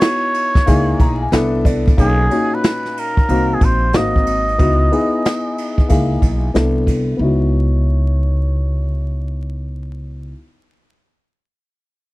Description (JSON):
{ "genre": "hip hop, jazz-hop", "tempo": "92 BPM", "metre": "4/4", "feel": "swing 65% on 16ths", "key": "C# dorian", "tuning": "A4 = 440 Hz", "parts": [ { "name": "trumpet with cup mute", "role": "melody", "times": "0.0-10.4 s", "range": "G#4 to D#5", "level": "-21 LUFS", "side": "right 1 dB", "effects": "low-pass filter" }, { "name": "warm upright piano", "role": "accompaniment", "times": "0.0-10.4 s", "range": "A#2 to A#5", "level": "-20 LUFS", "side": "left 2 dB", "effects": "low-pass filter" }, { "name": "jazz brush drum kit", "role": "drums", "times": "0.0-7.1 s", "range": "hi-hat, kick drum, ride cymbal, snare drum", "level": "-16 LUFS", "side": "equal", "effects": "none" }, { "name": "upright bass", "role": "bass", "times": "0.7-10.3 s", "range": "G#1 to C#2", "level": "-18 LUFS", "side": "equal", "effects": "none" } ], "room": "little or no reverb", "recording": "dry, close 1970s-style studio recording, vinyl crackle", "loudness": "-14 LUFS", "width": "side -20 dB against mid", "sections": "0.0-7.2 A section; 7.2-9.8 B section", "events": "filter sweep 0.0-7.2; upright piano fill 0.7-2.0", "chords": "0.0 C#m11; 0.7 C#m13; 1.3 Cmaj13; 2.0 Bmaj13; 3.3 G#9 (rootless); 3.9 G#7; 4.6 C#m11; 5.9 C#m13; 6.5 Cmaj13; 7.2 C#m11" }